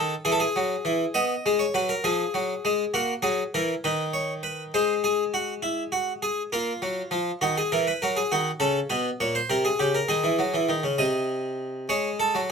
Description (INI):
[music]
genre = classical, baroque-style two-part invention for harpsichord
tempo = 67 BPM (dotted quarters)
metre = 6/8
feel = straight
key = E major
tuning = A4 = 440 Hz
[part]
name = harpsichord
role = solo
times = 0.0-12.5 s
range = Bb2 to D#5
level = -23 LUFS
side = equal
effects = none
[sound]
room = moderate studio reverb, RT60 0.6 s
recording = close, detailed microphones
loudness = -23 LUFS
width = side -6 dB against mid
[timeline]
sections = 0.0-4.7 A section; 4.7-11.9 B section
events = none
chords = 0.2 E; 1.1 B; 2.0 Fm; 2.9 F#7; 3.8 B/D#; 4.7 G#7; 5.6 Eadd9/G#; 6.5 A#5; 7.4 D#m; 8.3 D#dim; 9.2 Gdim/Bb; 10.1 G#sus4/D#; 11.0 Cm; 11.9 C#5/G#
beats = 0.25 | 1.14 2.04 | 2.93 3.83 | 4.73 5.63 | 6.53 7.41 | 8.29 9.18 | 10.09 10.99 | 11.90